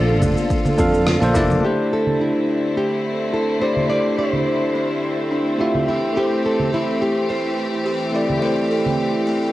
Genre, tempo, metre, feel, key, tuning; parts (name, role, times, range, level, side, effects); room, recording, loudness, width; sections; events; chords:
sunset chillout; 106 BPM; 4/4; swing 54% on 16ths; C major; A4 = 441 Hz
bell-like tine electric piano; accompaniment; 0.0-9.5 s; A3 to F5; -21 LUFS; equal; auto-pan, cassette tape, plate reverb
bright chamber string section; sustained chords; 0.0-9.5 s; D3 to A4; -26 LUFS; left 1 dB; cassette tape, plate reverb
fretless electric bass; bass; 0.0-1.6 s; F1 to F2; -19 LUFS; equal; tube saturation
bongos and congas; percussion; 0.1-1.6 s; -32 LUFS; left 2 dB
buzzing kalimba; arpeggios; 0.2-9.5 s; A3 to A4; -28 LUFS; right 1 dB; low-pass filter, cassette tape, analog delay, plate reverb
electronic congas, shaker and rim click; drums; 0.2-9.5 s; -25 LUFS; right 2 dB; low-pass filter on perc, cassette tape, low-pass filter on snare, low-pass filter on room
electronic kick drum; drums; 0.2-1.5 s; -23 LUFS; equal; overdrive, cassette tape
nylon-string guitar; melody; 1.1-9.5 s; E4 to D5; -24 LUFS; equal; cassette tape, analog delay, plate reverb
wind-like tuned noise texture; texture; 2.6-9.5 s; C5 to C6; -32 LUFS; equal; built-in reverb, cassette tape, plate reverb
moderate studio reverb, RT60 0.5 s; home recording on cassette; -17 LUFS; side -15 dB against mid
0.0-1.6 A section; 1.6-9.5 B section
band accent 1.1; filter sweep on kalimba 1.6-9.5
0.0 Bbmaj7; 1.6 C69; 5.9 Am7